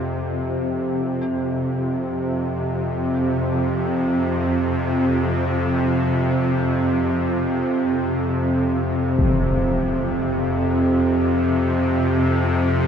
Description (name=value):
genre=dark ambient drone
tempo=free time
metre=none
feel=none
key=unclear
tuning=A4 = 439 Hz
part: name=dark detuned synth bell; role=arpeggios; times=0.0-9.2 s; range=G4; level=-41 LUFS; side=left 1 dB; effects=none
part: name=bowed-like drone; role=drone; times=0.0-12.9 s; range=F2 to C3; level=-19 LUFS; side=equal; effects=built-in reverb
part: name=impact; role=percussion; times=9.2-9.4 s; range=none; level=-25 LUFS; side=left 1 dB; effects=low-pass filter on sfx
room=wet huge ambient reverb, RT60 7.7 s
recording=none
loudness=-19 LUFS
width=side -7 dB against mid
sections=0.0-12.9 A section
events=fade-in on impacts and reversed cymbals 0.0-12.9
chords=0.0 Fsus2; 9.2 F5